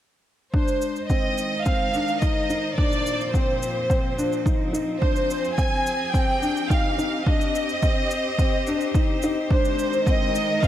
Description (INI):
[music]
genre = piano and strings electronica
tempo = 107 BPM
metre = 4/4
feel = straight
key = unclear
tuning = A4 = 441 Hz
[part]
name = warm studio violin section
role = melody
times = 0.5-10.7 s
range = C5 to Ab5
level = -25 LUFS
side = right 1 dB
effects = none
[part]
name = clear string quartet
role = sustained chords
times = 0.5-10.7 s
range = Bb2 to C5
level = -31 LUFS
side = right 1 dB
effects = none
[part]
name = felt-muted upright piano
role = riff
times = 0.5-10.7 s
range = C4 to Eb4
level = -27 LUFS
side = left 3 dB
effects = digital delay
[part]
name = electronic kick drum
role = drums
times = 0.5-10.7 s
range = none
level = -22 LUFS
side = equal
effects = overdrive
[part]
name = shaker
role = drums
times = 0.7-10.7 s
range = none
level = -41 LUFS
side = equal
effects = overdrive, high-pass filter on perc
[sound]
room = moderate echo chamber reverb, RT60 2.1 s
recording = none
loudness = -20 LUFS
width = side -11 dB against mid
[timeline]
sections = 0.5-10.7 A section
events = build-up 0.5-10.7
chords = 0.5 Ab; 2.8 Bbsus2; 5.0 Fm; 7.3 Cm; 9.5 Ab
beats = | 0.54 1.10 1.66 2.22 | 2.78 3.34 3.90 4.46 | 5.02 5.58 6.15 6.71 | 7.27 7.83 8.39 8.95 | 9.51 10.07 10.63